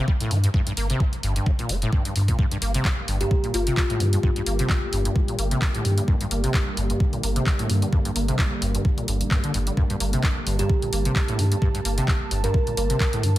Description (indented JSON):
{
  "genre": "acid house",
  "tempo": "130 BPM",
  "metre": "4/4",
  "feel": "swing 55% on 16ths",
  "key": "G minor",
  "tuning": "A4 = 442 Hz",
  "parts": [
    { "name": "acid bass, saw", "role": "riff", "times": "0.0-13.4 s", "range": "G1 to Bb3", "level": "-27 LUFS", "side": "equal", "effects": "tube saturation, ensemble chorus, sidechain pumping, dub echo" },
    { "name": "electronic kick drum", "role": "drums", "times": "0.1-13.1 s", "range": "none", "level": "-23 LUFS", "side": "equal", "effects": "none" },
    { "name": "punchy analog drum machine", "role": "drums", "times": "0.2-13.4 s", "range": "handclaps, hi-hat", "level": "-30 LUFS", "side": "equal", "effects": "none" },
    { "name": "warm sub bass", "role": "bass", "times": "0.3-13.4 s", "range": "F1 to G2", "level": "-24 LUFS", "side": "equal", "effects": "sidechain pumping" },
    { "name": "warm analog pad", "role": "sustained chords", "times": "2.4-13.4 s", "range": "D3 to A5", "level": "-31 LUFS", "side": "right 1 dB", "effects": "chorus, vintage 12-bit sampler grit, sidechain pumping" },
    { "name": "kalimba", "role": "melody", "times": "3.2-4.0, 10.6-13.1 s", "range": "F4 to Bb4", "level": "-30 LUFS", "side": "right 1 dB", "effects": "dub echo" }
  ],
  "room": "light reverb",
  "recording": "none",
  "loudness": "-20 LUFS",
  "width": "side -15 dB against mid",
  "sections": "0.0-13.4 A section",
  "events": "filter sweep on acid bass 0.0-13.4",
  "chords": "0.0 Gm"
}